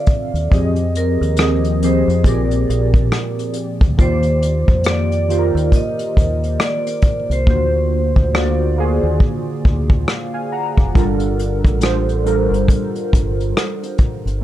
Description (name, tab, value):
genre	lo-fi hip hop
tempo	69 BPM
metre	4/4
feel	swing 59% on 16ths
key	unclear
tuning	A4 = 440 Hz
part	vibraphone with medium hard mallets	melody	0.0-9.0 s	Bb4 to Eb5	-22 LUFS	right 2 dB	low-pass filter
part	warbly lo-fi synth keys	accompaniment	0.0-14.4 s	Bb2 to A#5	-20 LUFS	equal	chorus, phaser, cassette tape, low-pass filter
part	vintage brush drum kit	drums	0.1-14.4 s	hi-hat, kick drum, rim click	-16 LUFS	equal	none
part	deep dub fingered electric bass	bass	0.3-14.4 s	E#1 to F2	-19 LUFS	equal	none
room	light reverb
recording	dark, warm production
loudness	-14 LUFS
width	side -13 dB against mid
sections	0.0-14.4 A section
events	hi-hats muted 7.5-11.0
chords	0.0 Dm7; 0.5 Fm7; 2.3 Bb13; 4.0 Ebmaj7; 7.5 D7alt; 11.0 Gm9